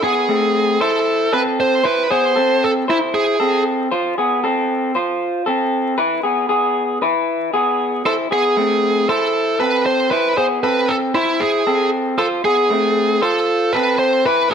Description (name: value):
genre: indie pop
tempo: 116 BPM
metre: 4/4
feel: straight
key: A harmonic minor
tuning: A4 = 440 Hz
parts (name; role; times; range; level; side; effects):
- bluesy overdriven lead guitar; melody; 0.0-3.6, 8.1-14.5 s; E4 to C5; -17 LUFS; right 2 dB; distortion
- electric guitar through a small old amp; arpeggios; 0.0-14.5 s; A3 to C5; -18 LUFS; left 1 dB; none
room: moderate echo chamber reverb, RT60 1.5 s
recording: vinyl crackle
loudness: -15 LUFS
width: side -7 dB against mid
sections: 0.0-8.0 A section; 8.0-14.5 B section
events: none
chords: 0.0 Am; 3.9 F; 6.0 E; 8.0 Am; 12.2 F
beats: 0.29 0.81 1.32 | 1.84 2.36 2.88 3.39 | 3.91 4.43 4.94 5.46 | 5.98 6.50 7.01 7.53 | 8.05 8.56 9.08 9.60 | 10.12 10.63 11.15 11.67 | 12.19 12.70 13.22 13.74 | 14.25